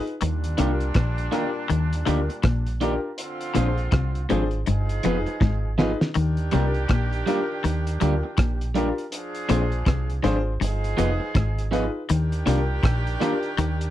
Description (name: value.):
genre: lovers rock reggae.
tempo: 81 BPM.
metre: 4/4.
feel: swing 62% on 16ths.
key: Eb major.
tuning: A4 = 443 Hz.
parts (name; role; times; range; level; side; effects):
cloth-damped thuddy drum kit; drums; 0.1-13.9 s; hi-hat, kick drum, rim click, snare drum; -26 LUFS; right 1 dB; none.
warm horn section; second line; 0.2-13.9 s; Bb2 to Ab4; -32 LUFS; right 2 dB; none.
twangy electric guitar; riff; 0.2-13.8 s; F2 to Eb3; -27 LUFS; left 5 dB; none.
deep dub fingered electric bass; bass; 0.2-13.9 s; F1 to Eb2; -24 LUFS; right 1 dB; none.
warm grand piano; accompaniment; 0.6-13.4 s; D4 to C5; -27 LUFS; left 4 dB; slapback echo.
electric guitar through a small old amp; stabs; 0.6-13.3 s; Eb3 to Ab4; -26 LUFS; right 5 dB; none.
room: little or no reverb.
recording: dry, close 1970s-style studio recording.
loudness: -21 LUFS.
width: side -13 dB against mid.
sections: 0.0-13.9 A section.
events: drum fill 5.4-6.2.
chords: 0.2 Ebmaj7; 3.2 Bb9; 4.7 G7b9b13; 6.2 Ebmaj7; 9.1 Bb9; 10.6 G7b9b13; 12.1 Ebmaj7.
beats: | 0.21 0.95 1.70 2.44 | 3.18 3.92 4.67 5.41 | 6.15 6.89 7.64 8.38 | 9.12 9.86 10.61 11.35 | 12.09 12.83 13.57.